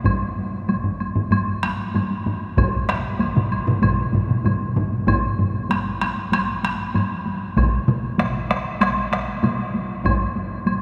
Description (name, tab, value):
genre	japanese traditional, taiko drum ensemble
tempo	96 BPM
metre	4/4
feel	straight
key	none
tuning	none
part	solo taiko drums	percussion	0.0-10.2 s	none	-27 LUFS	equal	none
part	taiko ensemble	percussion	0.1-10.8 s	none	-27 LUFS	equal	none
part	taiko ensemble	percussion	0.1-10.2 s	none	-30 LUFS	equal	none
part	woodblock	percussion	0.1-10.8 s	none	-31 LUFS	equal	none
part	taiko ensemble	percussion	2.6-9.6 s	none	-28 LUFS	equal	none
room	wet cathedral reverb, RT60 6.1 s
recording	recorded in a church or concert hall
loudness	-22 LUFS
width	mono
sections	0.0-10.8 A section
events	none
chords	none